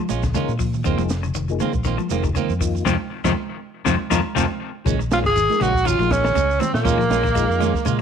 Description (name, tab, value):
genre	afrobeat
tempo	120 BPM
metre	4/4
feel	swing 54% on 16ths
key	Bb minor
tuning	A4 = 441 Hz
part	clean electric guitar	arpeggios	0.0-8.0 s	C3 to Ab3	-26 LUFS	left 11 dB	tape echo
part	clean electric guitar	stabs	0.1-8.0 s	Eb3 to F4	-28 LUFS	right 12 dB	none
part	fingered electric bass	bass	0.1-8.0 s	F1 to Bb2	-24 LUFS	equal	none
part	compact cocktail drum kit	drums	0.1-8.0 s	hi-hat, kick drum, snare drum	-27 LUFS	equal	none
part	congas	percussion	0.1-7.9 s	none	-29 LUFS	right 12 dB	none
part	shekere	percussion	0.1-8.0 s	none	-32 LUFS	right 4 dB	none
part	percussive tonewheel organ	accompaniment	0.3-7.7 s	F3 to Bb4	-30 LUFS	left 12 dB	slow rotary speaker, chorus vibrato
part	raspy tenor saxophone	melody	5.1-8.0 s	Bb3 to Ab4	-20 LUFS	left 1 dB	none
part	raspy alto saxophone	second line	5.1-8.0 s	Bb3 to Ab4	-25 LUFS	right 11 dB	none
room	light reverb, small room ambience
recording	1960s-style stereo with parts hard left and right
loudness	-18 LUFS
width	side -7 dB against mid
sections	0.0-4.9 A section; 4.9-8.0 B section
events	band accent 2.9-4.9; drum fill 4.4-4.9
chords	0.0 Bbm7; 0.9 F7sus4; 4.9 Bbm7